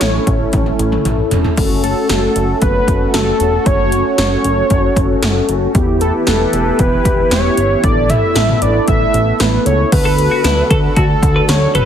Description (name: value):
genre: synth-pop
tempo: 115 BPM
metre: 4/4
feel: straight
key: unclear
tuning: A4 = 440 Hz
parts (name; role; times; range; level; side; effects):
- wide unison lead; melody; 0.0-11.9 s; A4 to E5; -17 LUFS; equal; digital delay
- mellow synth brass; accompaniment; 0.0-11.9 s; B3 to A4; -19 LUFS; equal; chorus
- phased analog pad; sustained chords; 0.0-11.9 s; D3 to B4; -22 LUFS; equal; phaser, chorus
- fat analog bass; bass; 0.0-11.9 s; E1 to D2; -18 LUFS; equal; none
- 80s electronic pad drums; drums; 0.0-11.9 s; crash cymbal, hi-hat, kick drum, snare drum, toms; -16 LUFS; equal; gated reverb on snare and toms
- twelve-string electric guitar; second line; 10.1-11.8 s; E4 to B4; -20 LUFS; left 2 dB; digital delay
room: light reverb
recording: heavily compressed radio sound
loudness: -11 LUFS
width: side -9 dB against mid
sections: 0.0-1.6 A section; 1.6-9.9 B section; 9.9-11.9 C section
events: drum fill 0.5-1.6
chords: 0.0 A; 1.6 F#m; 5.7 Em; 7.8 Asus2; 9.9 D